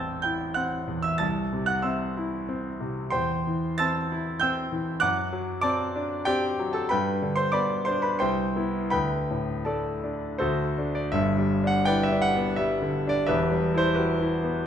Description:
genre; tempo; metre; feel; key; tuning
classical, romantic character piece for solo piano; 80-99 BPM; 3/4; rubato; G major from 3.1 s; A4 = 438 Hz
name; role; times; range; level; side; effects
clear concert grand piano; solo; 0.0-14.7 s; E1 to A6; -24 LUFS; equal; none
room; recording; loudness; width
wet recital hall reverb, RT60 1.5 s; none; -24 LUFS; side -9 dB against mid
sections
0.0-11.1 A section; 11.1-14.7 B section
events
none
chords
0.0 Am7; 1.2 Am/C; 3.1 C/E; 5.0 D7/F#; 6.9 G; 8.2 Cmaj7; 8.9 Dsus4; 10.4 D; 11.1 G; 13.3 Em

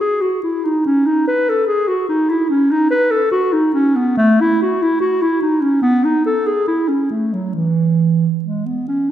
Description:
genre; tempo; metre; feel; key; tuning
classical, baroque-style fantasia for unaccompanied clarinet; 66-74 BPM; 4/4; rubato; E major from 4.2 s; A4 = 440 Hz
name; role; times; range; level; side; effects
mellow clarinet; solo; 0.0-9.1 s; E3 to B4; -14 LUFS; equal; none
room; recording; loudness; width
wet scoring stage reverb, RT60 2.0 s; heard from further back in the room; -14 LUFS; side -11 dB against mid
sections
0.0-9.1 A section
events
none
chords
none

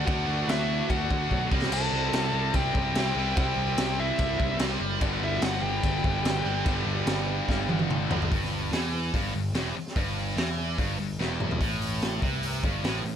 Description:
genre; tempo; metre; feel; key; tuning
hard rock; 146 BPM; 4/4; straight; unclear; A4 = 445 Hz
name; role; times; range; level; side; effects
dark smooth lead guitar; melody; 0.0-7.9 s; E5 to A5; -32 LUFS; left 2 dB; overdrive, slapback echo
smooth overdriven lead guitar; second line; 0.0-7.9 s; E4 to A4; -38 LUFS; right 5 dB; none
hollow soft pad; sustained chords; 0.0-8.3, 11.9-13.2 s; A3 to C6; -44 LUFS; left 2 dB; none
distorted electric guitar; riff; 0.0-13.2 s; E2 to D4; -33 LUFS; right 14 dB; overdrive
overdriven electric guitar; riff; 0.0-8.3 s; G2 to F#4; -36 LUFS; equal; none
scooped high-gain guitar; riff; 0.0-13.2 s; E2 to D4; -33 LUFS; left 13 dB; distortion
fuzz picked electric bass; bass; 0.0-13.2 s; E1 to E2; -31 LUFS; equal; overdrive
raw garage drum kit; drums; 0.1-13.2 s; crash cymbal, hi-hat, kick drum, snare drum, toms; -29 LUFS; equal; none
room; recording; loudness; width
studio reverb; none; -24 LUFS; side -9 dB against mid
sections
0.0-8.3 A section; 8.3-11.6 B section; 11.6-13.2 C section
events
drum fill 1.3-1.7, 7.5-8.3, 11.2-11.6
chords
0.0 D; 1.5 C; 5.0 G; 8.3 Em; 11.6 A5

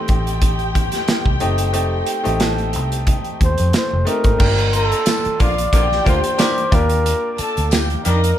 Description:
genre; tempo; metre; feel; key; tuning
lush 1970s-style soul; 90 BPM; 4/4; swing 54% on 16ths; unclear; A4 = 440 Hz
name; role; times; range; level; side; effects
dark symphonic violin section; second line; 0.0-8.3 s; Bb3 to Bb5; -26 LUFS; left 2 dB; none
bright baby grand piano; accompaniment; 0.0-8.4 s; A3 to G4; -26 LUFS; left 2 dB; none
glockenspiel with soft plastic mallets; texture; 0.0-7.0 s; G5 to D6; -31 LUFS; right 3 dB; none
vintage muted fingered electric bass; bass; 0.1-8.3 s; F1 to F2; -20 LUFS; equal; none
modern studio drum kit; drums; 0.1-8.4 s; crash cymbal, hi-hat, kick drum, snare drum; -19 LUFS; right 1 dB; none
breathy flugelhorn; melody; 3.4-8.4 s; A4 to D5; -20 LUFS; equal; none
tambourine; percussion; 5.1-7.9 s; none; -31 LUFS; left 8 dB; none
warm horn section; stabs; 5.4-8.2 s; D3 to G4; -24 LUFS; left 3 dB; none
room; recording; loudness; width
light reverb; none; -15 LUFS; side -11 dB against mid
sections
0.0-4.4 A section; 4.4-8.4 B section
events
none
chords
0.0 F9 (rootless); 4.4 Gm9; 6.7 Ebmaj7

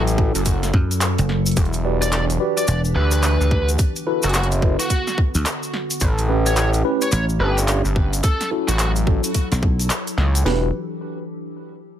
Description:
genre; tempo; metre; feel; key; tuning
glitch hop; 108 BPM; 4/4; swing 62% on 16ths; E dorian; A4 = 439 Hz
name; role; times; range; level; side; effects
warbly tape-like pad; sustained chords; 0.0-10.7 s; D3 to A4; -28 LUFS; equal; chorus, built-in reverb, sidechain pumping
gritty driven synth bass; bass; 0.0-10.7 s; E1 to D2; -19 LUFS; equal; tube saturation
drum and bass drum kit; drums; 0.1-10.4 s; handclaps, hi-hat, snare drum; -26 LUFS; equal; overdrive, small room ambience
cabasa; percussion; 0.1-10.4 s; none; -28 LUFS; left 2 dB; none
mellow tine electric piano; stabs; 0.2-10.7 s; C#4 to D5; -25 LUFS; equal; medium stereo tremolo, sidechain pumping, digital delay
drum and bass drum kit; drums; 0.2-10.6 s; kick drum, snare drum; -19 LUFS; equal; overdrive, small room ambience
dry thumbed slap bass; bass; 0.7-9.9 s; E1 to F#2; -19 LUFS; equal; tube saturation
biting lead guitar; melody; 2.0-8.9 s; F#4 to D5; -28 LUFS; equal; overdrive, digital delay
room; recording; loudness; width
digital ambience; none; -17 LUFS; side -10 dB against mid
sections
0.0-10.5 A section; 10.5-12.0 B section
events
drop 0.0-10.5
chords
0.0 F#m7; 1.6 Em7; 3.8 D6; 6.0 A7; 8.2 F#m7; 10.5 Em7

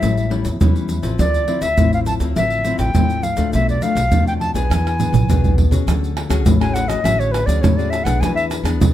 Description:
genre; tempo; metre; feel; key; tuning
samba and choro; 102 BPM; 4/4; straight; unclear; A4 = 440 Hz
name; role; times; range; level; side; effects
reedy silver concert flute; melody; 0.0-8.4 s; B4 to A5; -21 LUFS; left 1 dB; none
nylon-string guitar; accompaniment; 0.0-8.9 s; A2 to G#4; -22 LUFS; left 6 dB; none
upright bass; bass; 0.0-8.9 s; A1 to D3; -21 LUFS; right 1 dB; none
tube shaker, surdo, pandeiro and tamborim; percussion; 0.0-8.9 s; none; -18 LUFS; right 2 dB; none
room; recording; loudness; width
light reverb; close, detailed microphones; -15 LUFS; side -12 dB against mid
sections
0.0-5.9 A section; 5.9-8.9 B section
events
drum fill 4.7-5.9; flute solo 5.9-8.9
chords
0.0 A7; 1.2 Dm9; 3.5 Bm7b5; 4.7 E7; 5.9 Dmaj7#11; 8.2 E7

